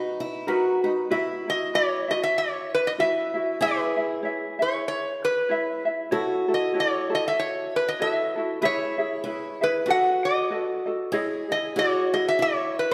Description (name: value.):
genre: Hawaiian.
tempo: 96 BPM.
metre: 4/4.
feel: swing 57% on 8ths.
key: E major.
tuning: A4 = 439 Hz.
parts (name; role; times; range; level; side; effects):
metal-body resonator slide guitar; melody; 0.0-12.9 s; B4 to F#5; -27 LUFS; equal; none.
picked acoustic archtop guitar; second line; 0.0-12.9 s; D#4 to G#4; -32 LUFS; equal; none.
ukulele; accompaniment; 0.0-12.9 s; D#4 to E5; -30 LUFS; equal; none.
room: moderate scoring stage reverb, RT60 1.8 s.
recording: none.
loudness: -25 LUFS.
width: mono.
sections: 0.0-1.1 A section; 1.1-12.9 B section.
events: none.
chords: 0.0 Bmaj7; 1.1 Esus2; 3.6 E6; 6.1 F#m7; 8.6 E; 9.9 B7; 11.1 C#madd9.